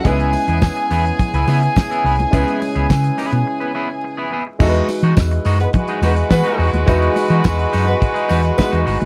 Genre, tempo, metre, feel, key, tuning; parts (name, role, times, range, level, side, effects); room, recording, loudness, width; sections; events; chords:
disco; 106 BPM; 4/4; straight; E major; A4 = 440 Hz
rich studio violin section; second line; 0.0-9.1 s; G#3 to G#5; -24 LUFS; equal
warm baby grand piano; accompaniment; 0.0-9.1 s; G#3 to B4; -26 LUFS; equal
mellow French horn section; sustained chords; 0.0-9.1 s; C#3 to D#5; -28 LUFS; equal
tambourine; percussion; 0.0-9.0 s; -43 LUFS; equal
electric guitar at the edge of break-up; accompaniment; 0.1-9.0 s; G#3 to B4; -27 LUFS; equal
hollow-body short-scale fingered electric bass; bass; 0.1-9.1 s; G1 to E3; -19 LUFS; equal
damped 70s drum kit; drums; 0.1-9.1 s; crash cymbal, hi-hat, kick drum, snare drum; -18 LUFS; equal
congas; percussion; 0.1-9.1 s; -28 LUFS; equal
mellow horn section; stabs; 5.6-8.8 s; G#3 to B4; -23 LUFS; equal
little or no reverb; vinyl crackle; -17 LUFS; mono
0.0-4.6 A section; 4.6-9.1 B section
break 3.5-4.6
0.0 C#m7; 4.6 Emaj9